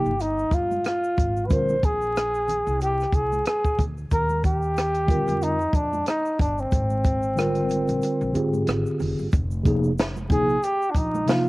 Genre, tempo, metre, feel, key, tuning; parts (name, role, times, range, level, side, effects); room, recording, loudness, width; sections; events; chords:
hip hop, jazz-hop; 92 BPM; 4/4; swing 58% on 16ths; F dorian; A4 = 444 Hz
breathy flugelhorn; melody; 0.0-11.5 s; C4 to C5; -24 LUFS; equal; cassette tape
mellow tine electric piano; accompaniment; 0.0-11.5 s; C3 to Bb4; -23 LUFS; equal; medium stereo tremolo, cassette tape
upright bass; bass; 0.0-11.2 s; F1 to Ab2; -29 LUFS; equal
egg shaker and congas; percussion; 0.1-11.5 s; -38 LUFS; right 4 dB
compact cocktail drum kit; drums; 0.2-11.5 s; hi-hat, kick drum, rim click, snare drum; -24 LUFS; equal; cassette tape
light reverb, small room ambience; home recording on cassette, vinyl crackle; -21 LUFS; side -21 dB against mid
0.0-9.3 A section; 9.3-11.5 B section
kick muted 8.0-9.3; flugelhorn solo 9.3-11.5
0.0 Fm9; 1.5 Bb9; 4.1 Ebmaj9; 6.7 Abmaj9; 9.3 Fm11